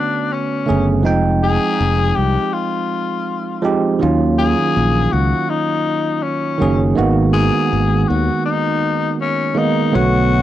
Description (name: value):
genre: R&B, neo-soul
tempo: 81 BPM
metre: 4/4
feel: swing 62% on 16ths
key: unclear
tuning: A4 = 440 Hz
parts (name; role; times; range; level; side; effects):
- growling tenor saxophone; melody; 0.0-10.4 s; Db4 to Ab4; -20 LUFS; left 6 dB; cassette tape
- bell-like tine electric piano; accompaniment; 0.0-10.4 s; C#3 to G5; -18 LUFS; right 4 dB; medium stereo tremolo, cassette tape
- modern bright fingered electric bass; bass; 0.7-10.4 s; F1 to Eb2; -17 LUFS; left 1 dB; transformer saturation
room: light reverb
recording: home recording on cassette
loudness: -14 LUFS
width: side -13 dB against mid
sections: 0.0-10.4 A section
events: none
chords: 0.0 Bm9; 1.0 Fm9; 4.0 Ebm9; 7.0 Abm9